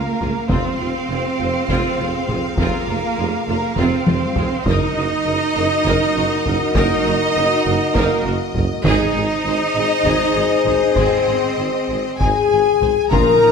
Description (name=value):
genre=cinematic, epic orchestral film score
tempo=200 BPM (eighths)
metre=7/8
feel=straight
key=unclear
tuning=A4 = 439 Hz
part: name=warm symphonic violin section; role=melody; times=0.0-13.5 s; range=Eb5 to Bb5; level=-28 LUFS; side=left 5 dB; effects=none
part: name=warm symphonic violin section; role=second line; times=0.0-13.5 s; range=F4 to Eb5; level=-24 LUFS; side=left 2 dB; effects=none
part: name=mellow French horn section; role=sustained chords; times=0.0-13.5 s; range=F4 to C5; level=-21 LUFS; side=left 6 dB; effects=none
part: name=mellow tuba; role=bass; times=0.0-13.5 s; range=F1 to Db2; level=-26 LUFS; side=right 3 dB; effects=none
part: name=rich studio cello section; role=bass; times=0.0-13.5 s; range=Bb2 to Eb4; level=-22 LUFS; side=right 5 dB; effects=none
part: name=clear symphonic viola section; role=accompaniment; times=0.2-13.5 s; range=C4 to C5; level=-26 LUFS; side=right 1 dB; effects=none
part: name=rich symphonic double bass section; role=bass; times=0.2-13.5 s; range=F1 to Db2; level=-26 LUFS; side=right 4 dB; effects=none
part: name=taiko ensemble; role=drums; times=0.2-13.5 s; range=none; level=-23 LUFS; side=equal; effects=none
part: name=bright large flute ensemble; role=second line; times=12.2-13.5 s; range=Ab5 to Bb5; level=-21 LUFS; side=left 1 dB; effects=none
part: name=timpani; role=percussion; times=13.1-13.5 s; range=Bb2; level=-21 LUFS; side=left 2 dB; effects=none
room=moderate scoring stage reverb, RT60 1.5 s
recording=none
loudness=-15 LUFS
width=side -6 dB against mid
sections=0.0-13.1 A section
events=drum fill 3.8-4.7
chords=0.0 Db; 0.5 Fm; 4.7 Ebm/Gb; 8.9 Ab